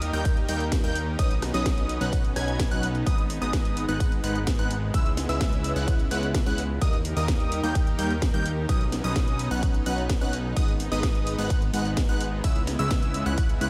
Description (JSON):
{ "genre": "EDM, festival progressive house", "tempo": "128 BPM", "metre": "4/4", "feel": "straight", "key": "G# minor", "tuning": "A4 = 440 Hz", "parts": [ { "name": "supersaw pad", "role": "sustained chords", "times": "0.0-13.7 s", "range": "C#3 to A#4", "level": "-36 LUFS", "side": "equal", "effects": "sidechain pumping" }, { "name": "plucky unison lead", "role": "arpeggios", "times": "0.0-13.7 s", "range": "D#6 to G#6", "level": "-36 LUFS", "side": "equal", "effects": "sidechain pumping, diffuse ambient delay" }, { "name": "supersaw stab", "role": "riff", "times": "0.0-13.7 s", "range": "F#3 to G#5", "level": "-34 LUFS", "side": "equal", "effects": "phaser, sidechain pumping, diffuse ambient delay" }, { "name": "fat analog bass", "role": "bass", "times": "0.0-13.7 s", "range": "G#1 to D#2", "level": "-32 LUFS", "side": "equal", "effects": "tube saturation, sidechain pumping" }, { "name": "house drum kit", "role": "drums", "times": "0.0-13.7 s", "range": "hi-hat, ride cymbal, rim click, snare drum", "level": "-37 LUFS", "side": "equal", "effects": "none" }, { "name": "electronic kick drum", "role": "drums", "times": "0.3-13.5 s", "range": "none", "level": "-27 LUFS", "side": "equal", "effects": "none" } ], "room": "light reverb", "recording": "none", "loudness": "-25 LUFS", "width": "mono", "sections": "0.0-13.7 A section", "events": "none", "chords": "0.0 D#; 1.2 Badd9; 3.1 G#m; 4.9 C#m7; 6.8 D#; 8.7 Badd9; 10.6 G#m; 12.4 C#m7" }